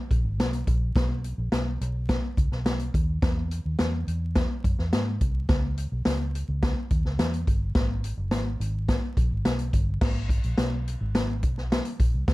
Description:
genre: uptempo 1960s-style soul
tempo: 106 BPM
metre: 4/4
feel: straight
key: unclear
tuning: A4 = 442 Hz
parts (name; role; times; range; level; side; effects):
- vintage muted fingered electric bass; bass; 0.1-12.3 s; F#1 to G#2; -28 LUFS; equal; none
- swinging big-band drum kit; drums; 0.1-12.3 s; crash cymbal, hi-hat, kick drum, snare drum; -25 LUFS; equal; none
room: little or no reverb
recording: dark, warm production, vinyl crackle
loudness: -24 LUFS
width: side -19 dB against mid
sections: 0.0-10.0 A section; 10.0-12.3 B section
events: none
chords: none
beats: 0.39 | 0.96 1.52 2.09 2.66 | 3.23 3.79 4.36 4.93 | 5.49 6.06 6.62 7.19 | 7.76 8.32 8.89 9.45 | 10.02 10.59 11.15 11.72 | 12.28

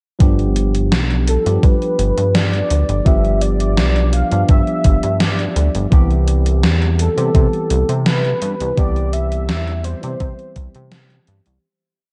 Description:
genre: vaporwave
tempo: 84 BPM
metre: 4/4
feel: straight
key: C major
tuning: A4 = 440 Hz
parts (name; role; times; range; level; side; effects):
- tine electric piano; accompaniment; 0.2-11.7 s; E3 to G4; -24 LUFS; equal; lush chorus, vintage 12-bit sampler grit, analog delay
- chorused synth bass; bass; 0.2-11.6 s; G1 to C3; -20 LUFS; equal; none
- electronic kick drum; drums; 0.2-10.7 s; none; -15 LUFS; equal; overdrive
- gated 80s digital drum machine; drums; 0.2-11.6 s; hi-hat, snare drum; -23 LUFS; equal; gated reverb, gated reverb snare, overdrive
- warm velvety synth lead; melody; 1.3-10.9 s; A4 to F5; -24 LUFS; equal; chorus, tape echo
room: light reverb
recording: nothing above 10.8 kHz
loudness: -16 LUFS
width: mono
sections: 0.2-11.6 groove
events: fade-out 7.8-11.6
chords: 0.2 G7; 5.9 Cmaj7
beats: | 0.20 0.92 1.63 2.35 | 3.06 3.78 4.49 5.20 | 5.92 6.63 7.35 8.06 | 8.78 9.49 10.20 10.92

